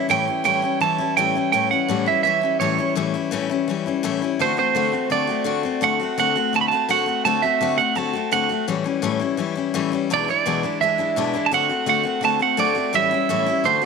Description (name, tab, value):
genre	rock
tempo	168 BPM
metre	4/4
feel	straight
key	A mixolydian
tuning	A4 = 438 Hz
part	clean electric guitar	melody	0.0-13.8 s	C5 to B5	-20 LUFS	right 11 dB	tape echo
part	picked steel-string acoustic guitar	accompaniment	0.0-13.9 s	E2 to F#4	-22 LUFS	left 9 dB	none
room	light reverb, studio reverb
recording	1960s-style stereo with parts hard left and right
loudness	-18 LUFS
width	side -5 dB against mid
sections	0.0-13.9 A section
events	none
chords	0.0 A7; 4.4 D7; 8.7 A7; 10.1 E7; 11.5 D7; 12.9 A7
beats	| 0.10 0.46 0.82 1.17 | 1.53 1.89 2.25 2.61 | 2.96 3.32 3.68 4.04 | 4.39 4.75 5.11 5.47 | 5.83 6.18 6.54 6.90 | 7.25 7.61 7.97 8.32 | 8.68 9.04 9.39 9.75 | 10.10 10.46 10.81 11.17 | 11.53 11.88 12.24 12.59 | 12.95 13.30 13.66